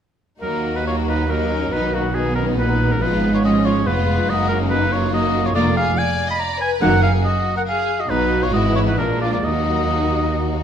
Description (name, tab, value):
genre	quick classical-period movement for symphony orchestra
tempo	140 BPM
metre	3/4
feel	rubato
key	Eb minor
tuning	A4 = 440 Hz
part	rich chamber violin section	melody	0.4-10.6 s	Bb3 to Eb5	-26 LUFS	left 6 dB	none
part	rich chamber violin section	second line	0.4-10.6 s	Bb3 to Gb4	-25 LUFS	left 3 dB	none
part	warm oboe	second line	0.4-10.6 s	F#4 to Cb6	-22 LUFS	equal	none
part	rich studio viola section	accompaniment	0.4-10.6 s	D3 to Bb3	-25 LUFS	right 1 dB	none
part	dark chamber cello section	bass	0.4-10.6 s	Eb2 to B2	-24 LUFS	right 2 dB	none
part	rich chamber double bass section	bass	0.4-10.6 s	F1 to Eb2	-24 LUFS	right 2 dB	none
room	moderate recital hall reverb, RT60 1.7 s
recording	none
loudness	-16 LUFS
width	side -8 dB against mid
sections	0.4-10.6 A section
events	none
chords	0.4 Ebm; 1.7 B; 3.0 Fdim/Ab; 4.3 Ebm/Gb; 5.5 Bb/F; 6.8 Ebm/Gb; 8.1 B; 8.5 E/G#; 9.0 Bb7; 9.4 Ebm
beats	| 0.42 0.86 1.29 | 1.72 2.15 2.57 | 3.00 3.43 3.85 | 4.28 4.70 5.12 | 5.55 5.97 6.39 | 6.82 7.25 7.68 | 8.10 8.53 8.98 | 9.44 9.92 10.38